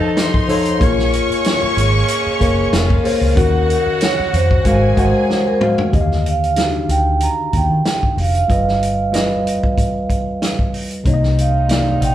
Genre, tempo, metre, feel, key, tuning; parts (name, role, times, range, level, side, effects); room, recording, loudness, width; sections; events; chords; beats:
lush 1970s-style soul; 94 BPM; 4/4; swing 54% on 16ths; Eb major from 5.9 s; A4 = 439 Hz
warm studio violin section; second line; 0.0-5.9 s; F4 to Db6; -23 LUFS; left 1 dB
tine electric piano; accompaniment; 0.0-12.1 s; C3 to Gb5; -19 LUFS; left 1 dB
muted French horn section; sustained chords; 0.0-5.9, 11.1-12.1 s; C3 to Gb4; -27 LUFS; right 1 dB
vintage drum kit; drums; 0.2-12.1 s; hi-hat, kick drum, snare drum, toms; -19 LUFS; equal
vibraphone with soft mallets; melody; 0.8-12.1 s; F4 to Bb5; -20 LUFS; right 2 dB
vintage muted fingered electric bass; bass; 0.8-12.1 s; F1 to Eb3; -18 LUFS; equal
moderate large studio reverb, RT60 0.9 s; band playing live in one room; -14 LUFS; side -12 dB against mid
0.0-5.9 A section; 5.9-12.1 B section
drum fill 5.3-5.9
0.0 F7b13; 0.8 Bbm9; 3.4 Ebm9; 4.7 Ab13; 5.9 Ebmaj9; 8.5 G7b13; 11.1 Cm9
0.17 | 0.81 1.45 2.09 2.73 | 3.37 4.01 4.65 5.29 | 5.93 6.57 7.21 7.85 | 8.49 9.13 9.78 10.41 | 11.06 11.70